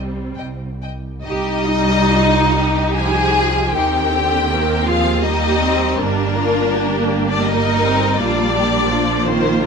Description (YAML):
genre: classical, slow romantic movement for string orchestra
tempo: 66-85 BPM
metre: 3/4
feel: rubato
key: C minor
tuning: A4 = 440 Hz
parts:
  - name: warm symphonic violin section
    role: second line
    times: 0.0-9.7 s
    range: Bb3 to G5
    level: -22 LUFS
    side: left 2 dB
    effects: none
  - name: warm symphonic viola section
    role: accompaniment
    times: 0.0-9.7 s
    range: D3 to Eb4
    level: -20 LUFS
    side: right 1 dB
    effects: none
  - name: dark symphonic cello section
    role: bass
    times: 0.0-9.7 s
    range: C4 to Bb4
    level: -25 LUFS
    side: right 3 dB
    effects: none
  - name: warm studio double bass section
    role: bass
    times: 0.0-9.7 s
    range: G1 to Eb2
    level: -21 LUFS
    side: right 3 dB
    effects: none
  - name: warm symphonic violin section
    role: melody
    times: 0.4-9.7 s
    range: Bb4 to Ab5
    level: -20 LUFS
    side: left 7 dB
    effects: none
room: moderate scoring stage reverb, RT60 2.0 s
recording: close, detailed microphones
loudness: -14 LUFS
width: side -5 dB against mid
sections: 0.0-1.3 A section; 1.3-9.7 B section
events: none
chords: 0.0 C5; 1.3 Cm; 3.7 Cm/Eb; 6.0 Gm; 8.2 Gm/Bb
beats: 0.38 | 1.26 2.10 2.97 | 3.75 4.50 5.25 | 6.00 6.75 7.47 | 8.20 8.91 9.64